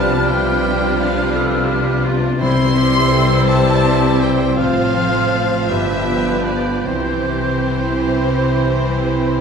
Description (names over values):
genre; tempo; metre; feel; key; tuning
classical, slow romantic movement for symphony orchestra; 49-59 BPM (dotted quarters); 12/8; rubato; C major; A4 = 440 Hz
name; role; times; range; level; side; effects
rich studio violin section; melody; 0.0-9.4 s; C5 to C6; -24 LUFS; left 3 dB; none
concert flute; second line; 0.0-9.4 s; E6 to G6; -25 LUFS; left 1 dB; none
rich chamber violin section; second line; 0.0-9.4 s; E4 to C5; -26 LUFS; left 2 dB; none
warm cor anglais; second line; 0.0-9.4 s; B4 to C5; -27 LUFS; right 3 dB; none
rich symphonic viola section; accompaniment; 0.0-9.4 s; E3 to D4; -23 LUFS; right 2 dB; none
warm bassoon; accompaniment; 0.0-9.4 s; E3 to G3; -25 LUFS; right 3 dB; none
mellow French horn section; sustained chords; 0.0-9.4 s; E3 to C4; -22 LUFS; equal; none
concert harp; arpeggios; 0.0-9.4 s; G2 to C5; -25 LUFS; left 9 dB; none
clear chamber double bass section; bass; 0.0-9.4 s; G1 to C2; -23 LUFS; right 1 dB; none
clear symphonic cello section; bass; 0.0-9.4 s; G2 to C3; -24 LUFS; equal; none
clear clarinet; second line; 0.3-9.4 s; E4 to A4; -27 LUFS; equal; none
timpani; percussion; 2.4-3.4 s; C3; -26 LUFS; left 3 dB; none
room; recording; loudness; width
wet recital hall reverb, RT60 1.3 s; none; -14 LUFS; side -6 dB against mid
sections
0.0-9.4 A section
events
none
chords
0.0 G7/C; 2.4 C; 4.6 F/A; 5.7 G7; 6.9 C